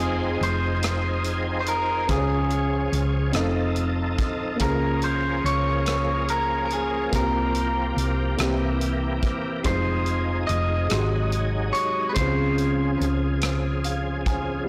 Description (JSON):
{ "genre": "slow gospel", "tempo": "48 BPM (dotted quarters)", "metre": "6/8", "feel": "straight", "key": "F minor", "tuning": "A4 = 440 Hz", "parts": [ { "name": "clean electric guitar", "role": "melody", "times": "0.0-13.1 s", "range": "Ab4 to Eb5", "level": "-29 LUFS", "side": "equal", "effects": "none" }, { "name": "dark upright piano", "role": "accompaniment", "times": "0.0-14.7 s", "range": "Ab2 to C6", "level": "-31 LUFS", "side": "equal", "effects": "none" }, { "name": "bright tonewheel organ", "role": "sustained chords", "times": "0.0-14.7 s", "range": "Db3 to A4", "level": "-32 LUFS", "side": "equal", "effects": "slow rotary speaker, overdrive, chorus vibrato" }, { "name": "hollow-body short-scale fingered electric bass", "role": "bass", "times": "0.0-14.6 s", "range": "F1 to Db2", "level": "-28 LUFS", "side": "equal", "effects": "transformer saturation" }, { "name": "modern studio drum kit", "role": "drums", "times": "0.0-14.5 s", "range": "hi-hat, kick drum, rim click", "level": "-32 LUFS", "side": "equal", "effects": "soft clipping on snare" } ], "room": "moderate concert hall reverb, RT60 2.0 s", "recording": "blown-out, overdriven recording, overdrive", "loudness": "-24 LUFS", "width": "mono", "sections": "0.0-14.7 A section", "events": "upright piano fill 13.4-14.7", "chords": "0.0 Fm7; 2.1 Db; 3.4 F7; 4.6 Bbm7/Db; 7.1 C7sus4; 8.4 C7; 9.6 Fm7; 10.9 Ab7; 12.2 Dbmaj7", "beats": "0.83 | 2.09 3.35 | 4.61 5.87 | 7.13 8.39 | 9.65 10.91 | 12.16 13.42 | 14.68" }